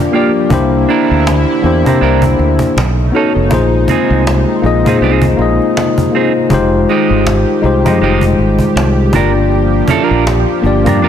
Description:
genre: R&B, neo-soul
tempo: 80 BPM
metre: 4/4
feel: swing 59% on 16ths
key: F dorian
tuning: A4 = 440 Hz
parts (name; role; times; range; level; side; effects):
- tine electric piano; accompaniment; 0.0-11.1 s; G3 to Eb5; -13 LUFS; left 4 dB; none
- chorused pulse-width pad; sustained chords; 0.0-11.1 s; C3 to G4; -19 LUFS; right 1 dB; none
- cajon; drums; 0.0-11.1 s; none; -18 LUFS; right 1 dB; none
- clean electric guitar; second line; 0.1-11.1 s; Ab3 to Bb4; -18 LUFS; right 8 dB; none
- fretless electric bass; bass; 0.5-11.1 s; F1 to C3; -14 LUFS; right 1 dB; none
room: light reverb, digital ambience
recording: dense, heavily limited modern master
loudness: -9 LUFS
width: side -9 dB against mid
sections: 0.0-11.1 A section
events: none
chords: 0.0 Gm7; 0.5 C9; 2.8 B9; 3.5 Bb9sus4; 6.5 Fm9; 9.1 Gm7

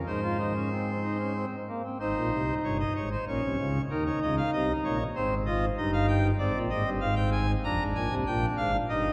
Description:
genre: classical, baroque-style 3-part fugue for pipe organ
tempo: 96 BPM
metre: 3/4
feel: straight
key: Ab major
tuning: A4 = 439 Hz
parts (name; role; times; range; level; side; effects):
- pipe organ, cornet; solo; 0.1-9.1 s; F1 to Bb5; -29 LUFS; equal; none
room: wet church reverb, RT60 3.6 s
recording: none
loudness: -29 LUFS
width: mono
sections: 0.0-2.0 A section; 2.0-9.1 B section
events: none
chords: 0.1 Ab; 3.3 Bbm; 3.9 Eb5; 5.1 Ab; 5.8 Eb/G; 7.0 Fm/Ab; 7.6 Bb7/F

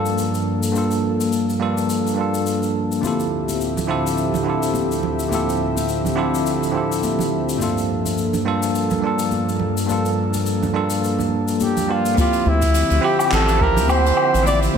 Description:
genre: sunset chillout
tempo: 105 BPM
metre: 4/4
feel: swing 57% on 16ths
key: G dorian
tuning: A4 = 440 Hz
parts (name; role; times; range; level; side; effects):
- bell-like tine electric piano; accompaniment; 0.0-14.8 s; G2 to A4; -21 LUFS; equal; auto-pan, ping-pong delay
- airy breathy pad; sustained chords; 0.0-14.8 s; D2 to E5; -24 LUFS; equal; chorus
- jazz brush drum kit; drums; 0.1-14.7 s; cabasa, handclaps, hi-hat, woodblock; -28 LUFS; left 1 dB; none
- congas; percussion; 3.0-14.8 s; none; -28 LUFS; right 2 dB; none
- warm flugelhorn; melody; 11.6-14.8 s; E4 to D5; -20 LUFS; right 1 dB; tape echo
- electronic kick drum; drums; 12.2-13.7 s; none; -21 LUFS; equal; none
- round analog bass; bass; 12.5-14.8 s; A1 to D2; -19 LUFS; equal; none
room: wet scoring stage reverb, RT60 1.9 s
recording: faint mains hum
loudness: -17 LUFS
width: side -7 dB against mid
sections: 0.0-12.2 A section; 12.2-14.8 B section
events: filter sweep on analog synth pad 0.0-12.2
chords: 0.0 Gm9; 3.0 Dm11; 7.6 Gm9; 12.2 Dm11

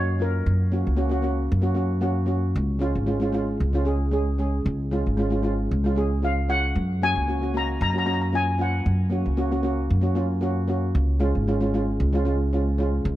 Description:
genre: calypso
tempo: 114 BPM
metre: 4/4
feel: straight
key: F# major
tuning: A4 = 440 Hz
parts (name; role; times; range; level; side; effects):
- steel pan; melody; 0.0-2.3, 6.2-10.1 s; A#4 to A#5; -26 LUFS; left 3 dB; none
- steel pan; accompaniment; 0.0-13.1 s; G#3 to F#5; -26 LUFS; right 1 dB; none
- upright bass; bass; 0.0-13.2 s; G#1 to F#2; -23 LUFS; equal; none
room: light reverb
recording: none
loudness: -21 LUFS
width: side -14 dB against mid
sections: 0.0-13.2 A section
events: steel pan fill 1.8-2.6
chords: 0.0 F#; 2.6 C#; 6.8 F#; 11.0 C#

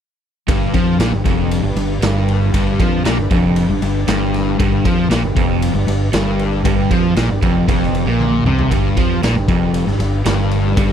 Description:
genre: classic rock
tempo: 117 BPM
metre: 4/4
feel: straight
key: G mixolydian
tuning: A4 = 440 Hz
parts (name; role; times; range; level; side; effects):
- string machine, full ensemble; sustained chords; 0.5-10.9 s; D4 to D5; -28 LUFS; equal; ensemble chorus
- crunchy overdriven guitar; riff; 0.5-10.9 s; F2 to F3; -20 LUFS; right 8 dB; none
- sludgy distorted guitar; riff; 0.5-10.9 s; F2 to F3; -19 LUFS; left 9 dB; overdrive
- fingered electric bass; bass; 0.5-10.9 s; F1 to F2; -20 LUFS; equal; none
- raw garage drum kit; drums; 0.5-10.9 s; kick drum, ride cymbal, snare drum, toms; -20 LUFS; equal; none
room: little or no reverb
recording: none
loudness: -14 LUFS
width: side -9 dB against mid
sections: 0.5-10.9 A section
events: drum fill 8.2-8.7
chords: 0.5 G

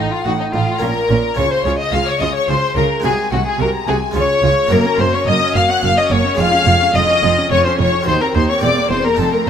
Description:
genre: classical, baroque-style concerto movement with solo episodes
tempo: 108 BPM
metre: 3/4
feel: straight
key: unclear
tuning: A4 = 440 Hz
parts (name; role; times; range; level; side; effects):
- dark violin; melody; 0.0-9.5 s; Eb4 to Gb5; -18 LUFS; left 2 dB; none
- warm symphonic violin section; melody; 0.0-9.5 s; Eb5 to Gb6; -23 LUFS; left 6 dB; none
- rich symphonic violin section; second line; 0.0-9.5 s; Eb4 to Gb5; -20 LUFS; left 2 dB; none
- harpsichord; accompaniment; 0.0-9.5 s; Eb2 to Ab4; -24 LUFS; left 1 dB; none
- warm studio viola section; accompaniment; 0.0-9.5 s; A3 to Gb4; -24 LUFS; right 1 dB; none
- dark studio double bass section; bass; 0.0-9.5 s; E1 to Eb2; -22 LUFS; right 4 dB; none
- rich studio cello section; bass; 0.0-9.5 s; Eb2 to Db3; -21 LUFS; right 4 dB; none
room: moderate concert hall reverb, RT60 1.7 s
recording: none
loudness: -13 LUFS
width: side -8 dB against mid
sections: 0.0-9.5 A section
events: none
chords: 0.0 F7/A; 0.8 Bbm; 1.4 Db; 3.0 Ab7/C; 4.2 Db; 4.7 Gb; 6.4 Db/F; 8.1 Cdim/Eb; 8.6 C7/E

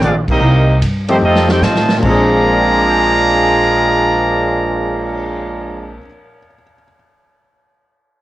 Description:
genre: jazz, big band swing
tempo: 149 BPM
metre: 4/4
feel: swing 65% on 8ths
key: Bb mixolydian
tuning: A4 = 440 Hz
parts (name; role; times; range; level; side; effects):
- clear trumpet section; melody; 0.0-6.0 s; Bb3 to Bb5; -15 LUFS; equal; cassette tape
- brilliant trombone section; second line; 0.0-6.0 s; Bb2 to G4; -18 LUFS; right 2 dB; none
- upright bass; bass; 0.0-6.0 s; Bb1 to A2; -19 LUFS; equal; transformer saturation
- swinging big-band drum kit; drums; 0.0-5.2 s; crash cymbal, cymbal swell, hi-hat, kick drum, ride cymbal, snare drum, toms; -21 LUFS; equal; none
- clear baby grand piano; accompaniment; 1.1-7.0 s; Bb2 to Bb6; -18 LUFS; left 1 dB; none
room: moderate studio reverb, RT60 0.6 s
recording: home recording on cassette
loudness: -11 LUFS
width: side -15 dB against mid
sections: 0.4-2.0 A section; 2.0-5.2 B section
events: drum fill 0.0-0.4, 1.2-2.0; band accent 0.2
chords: 0.4 Cm7; 1.2 F7; 2.0 Bb13

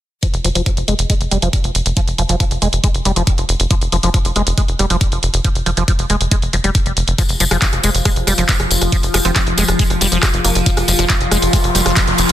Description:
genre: psychedelic trance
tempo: 138 BPM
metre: 4/4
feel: straight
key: F minor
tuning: A4 = 440 Hz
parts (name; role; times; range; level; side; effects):
- liquid acid bass; riff; 0.2-11.9 s; F3 to Ab3; -22 LUFS; moving between left 4 dB and right 4 dB; chorus, auto-pan, cassette tape, sidechain pumping, digital delay
- electronic kick drum; drums; 0.2-12.1 s; none; -16 LUFS; equal; none
- techno drum kit; drums; 0.2-12.3 s; handclaps, hi-hat, rim click; -20 LUFS; equal; none
- tight sequencer bass; bass; 0.3-12.3 s; F1; -18 LUFS; equal; tube saturation
- overtone-sweeping drone; sustained chords; 7.8-12.3 s; F3 to F4; -21 LUFS; left 2 dB; chorus, built-in reverb, sidechain pumping
- tambourine; percussion; 7.2-12.3 s; none; -21 LUFS; left 2 dB; none
- resonant blip pluck; second line; 9.2-11.1 s; Bb3 to C4; -28 LUFS; right 8 dB; chorus, phaser, sidechain pumping, high-pass filter, dub echo
- riser; sound effects; 11.0-12.3 s; none; -22 LUFS; equal; none
room: little or no reverb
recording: dense, heavily limited modern master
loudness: -13 LUFS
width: side -12 dB against mid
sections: 0.2-12.3 A section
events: filter sweep on acid bass 0.2-12.3; riser 11.0-12.3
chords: none

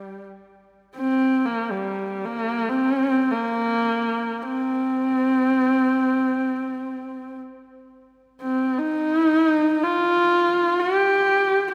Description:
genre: mongolian traditional, Mongolian folk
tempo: free time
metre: none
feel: none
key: C yu mode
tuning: A4 = 440 Hz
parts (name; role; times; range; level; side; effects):
- warm horsehead fiddle; solo; 0.0-11.7 s; G3 to G4; -22 LUFS; equal; none
room: moderate plate reverb, RT60 3.3 s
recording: rough home demo mix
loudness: -22 LUFS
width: mono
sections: 0.0-11.7 A section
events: none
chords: none

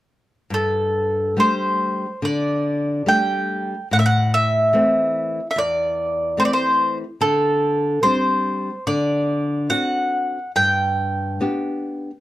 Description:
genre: fado-style ballad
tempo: 71 BPM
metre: 4/4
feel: rubato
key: G major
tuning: A4 = 437 Hz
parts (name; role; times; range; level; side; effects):
- mandolin; melody; 0.5-12.2 s; A4 to G5; -19 LUFS; equal; none
- nylon-string guitar; accompaniment; 0.5-12.1 s; E2 to G4; -22 LUFS; left 1 dB; none
room: moderate studio ambience, RT60 0.5 s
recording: none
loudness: -18 LUFS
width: side -15 dB against mid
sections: 0.5-12.2 A section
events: none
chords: 0.5 Gsus2; 3.9 Am; 7.2 D7sus4; 8.9 D7; 10.5 G

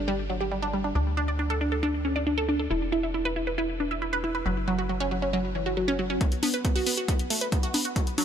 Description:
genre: uplifting trance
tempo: 137 BPM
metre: 4/4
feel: straight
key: B minor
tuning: A4 = 440 Hz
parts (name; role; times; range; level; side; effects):
- wide unison pluck; arpeggios; 0.0-8.2 s; E3 to E5; -27 LUFS; right 1 dB; phaser, sidechain pumping, ping-pong delay
- tight sequencer bass; bass; 0.0-6.2 s; E1 to D2; -31 LUFS; equal; sidechain pumping
- electronic hi-hat and congas; drums; 6.2-8.2 s; none; -28 LUFS; left 1 dB; none
- electronic kick drum; drums; 6.2-8.0 s; none; -25 LUFS; equal; none
room: light reverb, digital ambience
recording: none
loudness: -25 LUFS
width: side -8 dB against mid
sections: 0.0-6.2 A section; 6.2-8.2 B section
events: build-up 6.2-8.2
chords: 0.0 G5; 1.0 D5; 2.7 E5; 4.5 F#5; 6.2 B5

